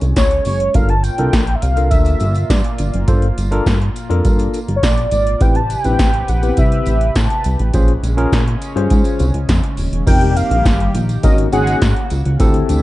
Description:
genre	early-eighties boogie funk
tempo	103 BPM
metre	4/4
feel	straight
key	unclear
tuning	A4 = 440 Hz
part	chorused pulse-width pad	sustained chords	0.0-12.8 s	Bb2 to B4	-27 LUFS	equal	none
part	chorused synth bass	bass	0.0-12.8 s	Eb1 to Bb2	-17 LUFS	equal	none
part	electro analog drum machine	drums	0.0-12.8 s	crash cymbal, hi-hat, kick drum, snare drum	-16 LUFS	equal	none
part	tambourine	percussion	0.0-12.8 s	none	-38 LUFS	right 8 dB	none
part	warm velvety synth lead	melody	0.2-12.1 s	Db5 to A5	-20 LUFS	equal	chorus
part	tine electric piano	accompaniment	0.7-12.8 s	B3 to C5	-21 LUFS	left 2 dB	medium stereo tremolo
part	mellow synth brass	second line	10.2-11.8 s	G3 to Bb4	-24 LUFS	equal	chorus
room	little or no reverb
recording	dark, warm production, nothing above 10.3 kHz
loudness	-13 LUFS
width	side -17 dB against mid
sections	0.0-10.1 A section; 10.1-12.8 B section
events	none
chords	0.0 Bbm9 (rootless); 0.7 Gm9; 5.4 Am9; 7.7 Bbm9; 10.1 F9sus4; 11.2 Ab9sus4

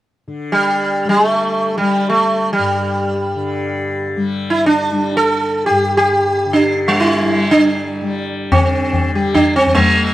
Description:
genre	indian classical, Hindustani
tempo	free time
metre	none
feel	none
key	G raga durga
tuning	A4 = 441 Hz
part	tanpura	drone	0.3-10.1 s	G2 to G3	-22 LUFS	left 3 dB	stereo widening
part	sitar	melody	0.5-10.1 s	G3 to A4	-14 LUFS	right 1 dB	none
part	tabla	percussion	8.5-9.9 s	none	-17 LUFS	left 2 dB	none
room	small room ambience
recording	dry, close 1970s-style studio recording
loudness	-13 LUFS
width	side -14 dB against mid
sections	0.3-8.5 A section; 8.5-10.1 B section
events	none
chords	none

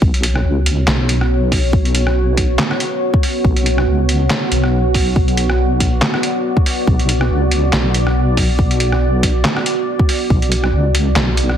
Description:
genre	deep dubstep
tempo	140 BPM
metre	4/4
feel	swing 56% on 16ths, half-time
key	B minor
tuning	A4 = 440 Hz
part	deep dark ambient pad	sustained chords	0.0-11.6 s	B3 to D5	-20 LUFS	right 1 dB	chorus, built-in reverb
part	deep soft wobble bass	bass	0.0-11.6 s	B1 to C#2	-16 LUFS	equal	chorus
part	electronic kick drum	drums	0.0-10.4 s	none	-15 LUFS	equal	none
part	trip hop sampler-style drum kit	drums	0.1-11.6 s	handclaps, hi-hat, rim click, snare drum	-20 LUFS	equal	overdrive
room	light reverb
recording	heavily compressed radio sound, multiband compression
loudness	-13 LUFS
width	side -9 dB against mid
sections	0.0-11.6 A section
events	none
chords	0.0 Bmadd9

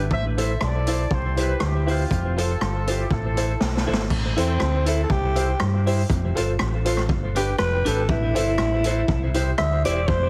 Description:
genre	ska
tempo	120 BPM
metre	4/4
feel	swing 54% on 8ths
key	A minor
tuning	A4 = 440 Hz
part	fingered electric bass	bass	0.0-10.3 s	E1 to G2	-26 LUFS	equal	none
part	warm horn section	melody	0.1-3.8 s	C4 to E5	-32 LUFS	equal	analog delay
part	raw garage drum kit	drums	0.1-10.2 s	crash cymbal, hi-hat, kick drum, rim click, snare drum	-29 LUFS	equal	none
part	clean electric guitar	accompaniment	0.4-10.0 s	D4 to C5	-35 LUFS	equal	harmonic tremolo, analog delay
part	warm upright piano	stabs	0.4-10.0 s	D4 to C5	-31 LUFS	equal	analog delay
part	breathy alto saxophone	melody	4.4-10.3 s	C4 to E5	-27 LUFS	equal	analog delay
room	light reverb, small room ambience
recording	heavily compressed radio sound, vinyl crackle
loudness	-22 LUFS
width	mono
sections	0.0-4.1 A section; 4.1-10.3 B section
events	drum fill 3.6-4.1; alto saxophone solo 4.1-10.3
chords	0.1 Am; 1.1 C; 2.1 F; 3.1 Am; 5.1 C; 6.1 F; 7.1 G; 8.1 Am; 9.1 C

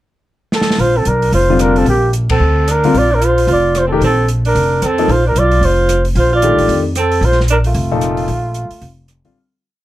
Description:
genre	modal jazz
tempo	224 BPM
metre	4/4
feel	swing 60% on 8ths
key	Bb major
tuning	A4 = 440 Hz
part	trumpet with bucket mute	melody	0.5-9.1 s	F4 to D5	-16 LUFS	equal	none
part	open jazz drum kit	drums	0.5-9.3 s	hi-hat, kick drum, ride cymbal, rim click, snare drum	-24 LUFS	right 1 dB	none
part	breathy alto saxophone	second line	0.8-9.1 s	A3 to F4	-19 LUFS	right 4 dB	none
part	upright bass	bass	0.8-9.3 s	F1 to F2	-15 LUFS	equal	none
part	clear concert grand piano	accompaniment	1.5-9.3 s	Bb2 to A4	-16 LUFS	left 4 dB	none
room	moderate club reverb, RT60 0.5 s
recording	dark, warm production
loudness	-11 LUFS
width	side -15 dB against mid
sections	0.0-0.8 pickup bar; 0.8-9.4 A section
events	drum fill 0.5; band accent 2.3; fade-out 7.6-9.4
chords	0.0 N.C.; 0.8 Bbmaj9

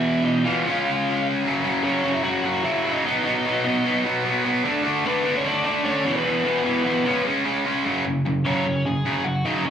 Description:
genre	punk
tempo	150 BPM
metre	4/4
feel	straight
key	unclear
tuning	A4 = 440 Hz
part	biting lead guitar	melody	0.0-9.7 s	B3 to G#5	-25 LUFS	left 1 dB	overdrive
part	distorted electric guitar	riff	0.0-9.7 s	E2 to D4	-21 LUFS	equal	overdrive, slapback echo
room	light reverb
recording	live gig heard through the venue's PA, club reverb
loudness	-20 LUFS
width	side -8 dB against mid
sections	0.0-1.4 A section; 1.4-7.8 B section; 7.8-9.7 C section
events	none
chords	0.0 E5; 0.6 C#; 1.4 F#5; 3.1 B; 4.7 D5; 6.0 E5; 7.0 C#5; 7.8 F#5

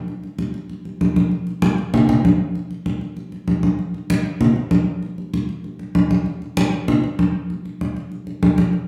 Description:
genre	latin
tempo	194 BPM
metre	4/4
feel	straight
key	none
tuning	none
part	congas	percussion	0.1-8.9 s	none	-20 LUFS	equal	none
room	wet stone room reverb, RT60 1.0 s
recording	band playing live in one room, studio reverb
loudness	-20 LUFS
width	mono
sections	0.1-8.9 A section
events	none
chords	none

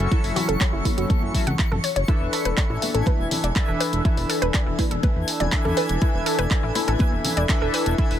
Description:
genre	progressive house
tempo	122 BPM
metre	4/4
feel	straight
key	unclear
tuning	A4 = 440 Hz
part	chorused polysynth	stabs	0.0-8.2 s	E3 to E5	-26 LUFS	left 2 dB	sidechain pumping, tape echo
part	fat analog bass	bass	0.0-8.2 s	E1 to F#2	-26 LUFS	equal	sidechain pumping
part	pop drum kit	drums	0.0-8.2 s	handclaps, hi-hat	-29 LUFS	equal	overdrive, sidechain pumping on hats
part	twinkling granular texture	texture	0.0-8.2 s	G#5 to C#6	-34 LUFS	left 1 dB	built-in reverb, sidechain pumping
part	analog pluck	arpeggios	0.1-8.1 s	E4 to F#5	-28 LUFS	right 1 dB	chorus, sidechain pumping, tape echo
part	electronic kick drum	drums	0.1-8.1 s	none	-22 LUFS	equal	none
part	congas	percussion	0.4-7.3 s	none	-31 LUFS	left 3 dB	sidechain pumping on perc
room	little or no reverb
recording	none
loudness	-19 LUFS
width	side -10 dB against mid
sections	0.0-8.2 A section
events	filter sweep on synth arpeggio sound 0.0-8.2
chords	0.0 F#m7; 2.1 E7sus4

